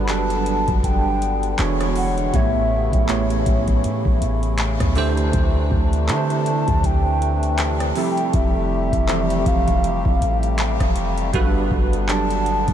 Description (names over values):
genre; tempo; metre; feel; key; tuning
contemporary R&B; 80 BPM; 4/4; swing 58% on 16ths; G major; A4 = 440 Hz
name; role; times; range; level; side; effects
hollow clarinet-like synth lead; melody; 0.0-12.7 s; C#5 to B5; -25 LUFS; left 1 dB; chorus, ping-pong delay
bell-like tine electric piano; accompaniment; 0.0-12.7 s; A2 to D5; -24 LUFS; right 6 dB; ensemble chorus
hand-pumped harmonium; sustained chords; 0.0-12.7 s; C3 to C#5; -28 LUFS; left 4 dB; sidechain pumping
clean 808-style bass; bass; 0.0-12.7 s; E1 to D3; -22 LUFS; left 1 dB; none
booming analog drum machine; drums; 0.1-12.7 s; handclaps, hi-hat, kick drum, rim click; -23 LUFS; equal; none
room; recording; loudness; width
moderate huge ambient reverb, RT60 6.8 s; dreamy mix soaked in reverb; -17 LUFS; side -10 dB against mid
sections
0.0-12.7 A section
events
none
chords
0.0 Gmaj7; 1.6 E13; 2.3 A7; 5.0 D9sus4; 8.0 Fmaj9; 11.3 Gmaj7